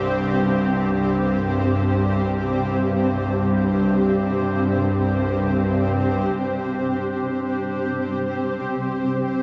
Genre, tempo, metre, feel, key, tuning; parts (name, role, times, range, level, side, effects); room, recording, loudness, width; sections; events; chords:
dark ambient drone; free time; A4 = 438 Hz
granular cloud pad; sustained chords; 0.0-9.4 s; C4 to C5; -25 LUFS; equal; built-in reverb
bowed-like drone; drone; 0.0-9.4 s; C2 to G2; -25 LUFS; equal; built-in reverb
mellow duduk; melody; 5.8-9.4 s; C4 to D4; -34 LUFS; equal; delay
flickering grainy texture; texture; 7.3-9.4 s; C5; -44 LUFS; equal
wet cathedral reverb, RT60 6.1 s; in a vast, echoing space, nothing above 8.0 kHz; -22 LUFS; mono
0.0-6.4 A section; 6.4-9.4 B section
0.0 C5